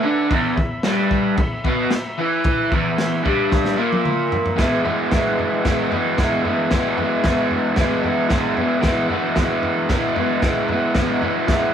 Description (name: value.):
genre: garage rock duo or trio.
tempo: 113 BPM.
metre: 4/4.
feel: straight.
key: E major.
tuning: A4 = 441 Hz.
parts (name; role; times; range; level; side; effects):
combo organ; sustained chords; 0.0-11.7 s; B4 to B5; -29 LUFS; left 1 dB; none.
crunchy overdriven guitar; riff; 0.0-11.7 s; E2 to E4; -18 LUFS; equal; none.
crunchy breakbeat drum kit; drums; 0.3-11.6 s; crash cymbal, kick drum, snare drum, toms; -23 LUFS; equal; none.
room: light reverb.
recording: band playing live in one room.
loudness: -17 LUFS.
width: side -8 dB against mid.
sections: 0.0-4.6 A section; 4.6-11.7 B section.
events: drum fill 3.5-4.6.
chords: 0.0 E5; 4.6 E.